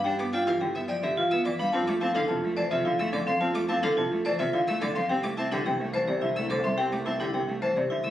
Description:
classical, minimalist pattern music; 107 BPM; 3/4; straight; A4 = 440 Hz
marimba with medium hard mallets; melody; 0.0-8.1 s; G4 to A5; -28 LUFS; left 2 dB
vibraphone with hard mallets; arpeggios; 0.0-8.1 s; C4 to D5; -30 LUFS; right 2 dB
rich double bass; bass; 0.0-8.1 s; C2 to G2; -37 LUFS; right 2 dB
rich cello; accompaniment; 0.1-8.1 s; C3 to D4; -31 LUFS; equal
warm violin; arpeggios; 0.2-8.1 s; E5 to E6; -36 LUFS; left 1 dB
moderate recital hall reverb, RT60 1.3 s; recorded on a phone in the room, club reverb; -24 LUFS; side -12 dB against mid
0.0-8.1 A section
0.0 G7; 1.7 Fmaj7; 5.1 C6
| 0.05 0.61 1.17 | 1.73 2.29 2.85 | 3.42 3.98 4.54 | 5.10 5.66 6.22 | 6.78 7.34 7.90

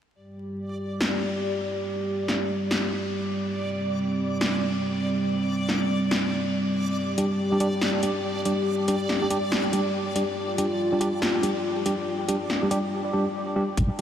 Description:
deep dubstep; 141 BPM; 4/4; swing 61% on 16ths, half-time; A4 = 440 Hz
dark analog pad; sustained chords; 0.2-14.0 s; G3 to G4; -27 LUFS; equal; lush chorus
backwards swelling texture; texture; 0.2-12.9 s; D5; -33 LUFS; left 1 dB; built-in reverb
deep house drum kit; drums; 1.0-14.0 s; hi-hat, snare drum; -30 LUFS; left 1 dB; overdrive
tine electric piano; stabs; 7.2-14.0 s; G3 to G4; -26 LUFS; right 1 dB; dub echo
deep soft wobble bass; bass; 13.8-13.9 s; G1; -23 LUFS; equal; chorus
electronic kick drum; drums; 13.8-13.9 s; -27 LUFS; equal
wet huge ambient reverb, RT60 8.0 s; dreamy mix soaked in reverb, vinyl crackle; -23 LUFS; side -9 dB against mid
0.2-13.8 A section
0.2 G5
| 0.16 0.58 1.01 1.43 | 1.86 2.28 2.71 3.13 | 3.56 3.99 4.41 4.84 | 5.26 5.69 6.11 6.54 | 6.96 7.39 7.82 8.24 | 8.67 9.09 9.52 9.94 | 10.37 10.79 11.22 11.65 | 12.07 12.50 12.92 13.35 | 13.77

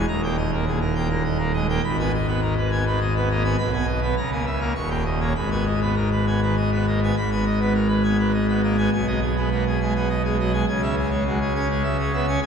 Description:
classical, organ toccata; 103 BPM; 3/4; straight; G# minor; A4 = 441 Hz
pipe organ, full organ; solo; 0.0-12.5 s; D#1 to C#6; -20 LUFS; equal
wet cathedral reverb, RT60 5.4 s; heard from further back in the room; -20 LUFS; side -6 dB against mid
0.0-7.2 A section; 7.2-12.5 B section
0.1 D#; 1.8 G#m; 3.6 G#m/B; 4.2 A#m7b5/C#; 4.8 D#7; 5.4 G#m; 8.9 G#m/B; 10.7 C#m
| 0.08 0.67 1.25 | 1.83 2.41 3.00 | 3.58 4.17 4.76 | 5.36 5.96 6.56 | 7.16 7.75 8.34 | 8.92 9.50 10.09 | 10.67 11.25 11.84 | 12.42

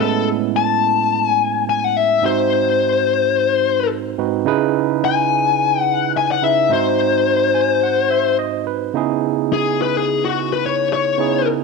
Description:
blues; 107 BPM; 4/4; swing 55% on 16ths; C# minor; A4 = 440 Hz
smooth overdriven lead guitar; melody; 0.0-11.5 s; F#4 to A5; -17 LUFS; left 9 dB; slapback echo
barky tine electric piano; accompaniment; 0.0-11.6 s; G#2 to G#5; -20 LUFS; right 15 dB; auto-pan
moderate plate reverb, RT60 2.6 s; 1960s-style stereo with parts hard left and right; -15 LUFS; side -3 dB against mid
0.0-8.9 A section; 8.9-11.6 B section
lead electric guitar solo 0.0-8.9; tine electric piano fill 7.3-8.9
0.0 Amaj7; 2.2 G#7#9; 4.5 C#m7; 6.7 G#7; 8.9 C#m7
0.55 1.11 1.67 | 2.23 2.79 3.35 3.91 | 4.47 5.03 5.59 6.15 | 6.71 7.27 7.83 8.39 | 8.95 9.51 10.07 10.63 | 11.19

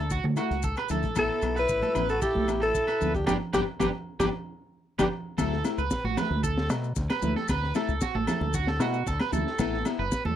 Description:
highlife guitar band; 114 BPM; 4/4; straight; D major; A4 = 440 Hz
picked plugged-in steel-string acoustic guitar; accompaniment; 0.0-10.0 s; E3 to G4; -32 LUFS; left 10 dB
electric guitar at the edge of break-up; arpeggios; 0.0-10.4 s; D4 to B4; -32 LUFS; right 5 dB; analog chorus, slapback echo
deep dub fingered electric bass; bass; 0.0-10.4 s; F#1 to D3; -30 LUFS; equal
crunchy breakbeat drum kit; drums; 0.1-10.2 s; hi-hat, kick drum, rim click, snare drum; -32 LUFS; equal
maracas; percussion; 0.1-10.2 s; -42 LUFS; left 26 dB
congas; percussion; 0.2-10.4 s; -33 LUFS; right 5 dB
agogo bells; percussion; 0.4-10.0 s; -40 LUFS; left 2 dB
growling alto saxophone; melody; 1.2-5.1 s; G4 to B4; -26 LUFS; equal; slapback echo
breathy trumpet; second line; 1.2-5.1 s; D4 to F#4; -36 LUFS; left 6 dB
little or no reverb; dry, close 1970s-style studio recording; -25 LUFS; side -10 dB against mid
0.0-5.4 A section; 5.4-10.4 B section
band accent 3.3-5.4
0.0 Dadd9; 1.2 Asus2; 3.3 G; 5.4 Dadd9; 9.6 Asus2
0.11 0.64 | 1.16 1.69 2.22 2.75 | 3.27 3.80 4.33 4.85 | 5.38 5.91 6.43 6.96 | 7.49 8.02 8.54 9.07 | 9.60 10.12

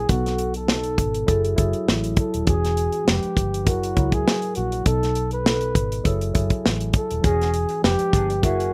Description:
lush 1970s-style soul; 101 BPM; 4/4; swing 54% on 16ths; A4 = 441 Hz
breathy flugelhorn; melody; 0.0-8.7 s; F#4 to B4; -28 LUFS; equal
tine electric piano; accompaniment; 0.0-8.7 s; B2 to Cb5; -29 LUFS; equal; overdrive, phaser
vintage muted fingered electric bass; bass; 0.0-8.7 s; D#1 to C#2; -28 LUFS; equal
tight funk drum kit; drums; 0.1-8.7 s; hi-hat, kick drum, snare drum; -24 LUFS; equal
electric guitar through a small old amp; riff; 7.2-8.7 s; A#3 to G#4; -34 LUFS; equal; wah
little or no reverb; rough home demo mix; -22 LUFS; mono
0.0-8.7 A section
0.1 B7; 1.3 F#m9; 2.5 E69; 3.1 Fdim7; 3.7 F#9; 4.9 B7; 6.0 F#m9; 7.2 E69; 7.8 Fdim7
| 0.09 0.69 1.28 1.88 | 2.48 3.07 3.67 4.26 | 4.86 5.45 6.05 6.64 | 7.24 7.83 8.43

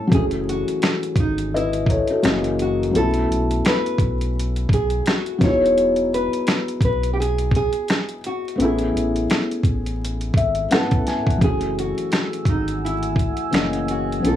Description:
lo-fi hip hop; 85 BPM; 4/4; swing 57% on 16ths; F# dorian; A4 = 440 Hz
nylon-string guitar; melody; 0.0-14.4 s; D#4 to C#5; -24 LUFS; equal
felt-muted upright piano; accompaniment; 0.0-14.4 s; F#2 to G#5; -22 LUFS; left 2 dB
saturated sub bass; bass; 0.1-14.4 s; E1 to B1; -26 LUFS; equal
dusty soul sampler-style drum kit; drums; 0.1-14.4 s; finger snaps, hi-hat, kick drum, snare drum; -21 LUFS; equal
deep dark ambient pad; sustained chords; 12.0-14.4 s; A3 to E6; -29 LUFS; right 3 dB; chorus, built-in reverb
moderate small room reverb, RT60 0.5 s; vinyl crackle, small room ambience; -18 LUFS; side -11 dB against mid
0.1-14.4 A section
0.1 F#m9; 2.2 F#13; 2.9 B7sus4; 5.4 Emaj9; 8.6 Amaj7; 11.4 F#m9; 13.5 F#13
| 0.12 0.82 1.53 2.23 | 2.94 3.65 4.35 5.06 | 5.76 6.47 7.18 7.88 | 8.59 9.29 10.00 10.71 | 11.41 12.12 12.82 13.53 | 14.23

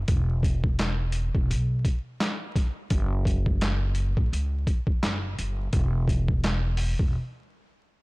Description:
hip hop, boom-bap hip-hop; 85 BPM; 4/4; swing 56% on 16ths; A4 = 444 Hz
upright bass; bass; 0.0-7.1 s; E1 to C#2; -26 LUFS; equal; transformer saturation
boom bap sampler-style drum kit; drums; 0.1-7.1 s; handclaps, hi-hat, kick drum, snare drum; -26 LUFS; equal; overdrive
little or no reverb; blown-out, overdriven recording, vinyl crackle, overdrive; -23 LUFS; side -24 dB against mid
0.0-8.0 A section
break 7.1-8.0
| 0.08 0.79 1.50 2.20 | 2.91 3.61 4.32 5.03 | 5.73 6.44 7.14

